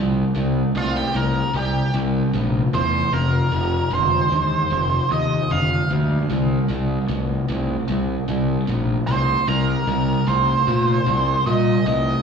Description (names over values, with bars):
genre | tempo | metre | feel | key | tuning
rock | 76 BPM | 4/4 | straight | C minor | A4 = 445 Hz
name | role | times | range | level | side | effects
sludgy distorted guitar | riff | 0.0-12.2 s | F2 to A3 | -22 LUFS | equal | overdrive
fuzz fingered electric bass | bass | 0.0-12.1 s | F1 to Bb2 | -22 LUFS | equal | overdrive
octave-fuzz lead guitar | melody | 0.8-12.2 s | F4 to F5 | -22 LUFS | right 3 dB | wah, distortion, slapback echo, tape echo
room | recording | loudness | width
light reverb | live gig heard through the venue's PA, recital hall reverb, small room reverb | -18 LUFS | side -6 dB against mid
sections
0.0-12.2 A section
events
none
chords
0.0 C5; 3.1 F5; 6.3 C5